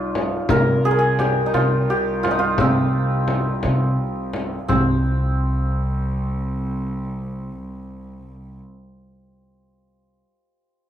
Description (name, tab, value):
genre	Persian modal ensemble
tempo	57 BPM (dotted quarters)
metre	6/8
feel	straight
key	C dastgah shur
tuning	A4 = 440 Hz
part	santur	melody	0.0-8.7 s	C4 to Bb4	-22 LUFS	equal	plate reverb
part	muted cello	drone	0.0-8.6 s	C2	-30 LUFS	right 1 dB	none
part	frame drum	percussion	0.2-5.0 s	none	-24 LUFS	left 2 dB	none
part	upright bass	bass	0.5-8.6 s	C2 to C3	-22 LUFS	equal	none
room	moderate small room reverb, RT60 0.5 s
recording	none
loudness	-18 LUFS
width	side -10 dB against mid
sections	0.0-4.7 A section; 4.7-8.9 B section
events	none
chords	none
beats	| 0.50 1.55 | 2.60 3.65 | 4.70 5.75 | 6.81 7.86